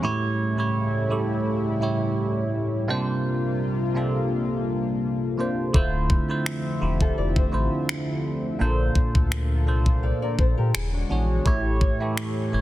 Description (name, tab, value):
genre	contemporary R&B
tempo	84 BPM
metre	4/4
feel	swing 54% on 16ths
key	D minor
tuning	A4 = 435 Hz
part	bell-like tine electric piano	accompaniment	0.0-12.6 s	A2 to C#5	-25 LUFS	right 2 dB	phaser
part	chorused pulse-width pad	sustained chords	0.0-12.6 s	C3 to E5	-30 LUFS	left 2 dB	sidechain pumping
part	sub bass with octave	bass	5.7-12.6 s	D1 to Bb2	-24 LUFS	equal	none
part	trap drum kit	drums	5.7-12.4 s	finger snaps, kick drum	-23 LUFS	equal	soft clipping on snare
part	flamenco guitar	arpeggios	7.0-11.4 s	D4 to F5	-33 LUFS	left 7 dB	digital delay
room	little or no reverb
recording	dense, heavily limited modern master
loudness	-22 LUFS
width	side -14 dB against mid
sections	0.0-12.6 A section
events	none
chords	0.0 A7; 2.9 C7sus4; 5.7 Dm9; 8.6 Bbmaj7; 10.7 E13; 11.5 A7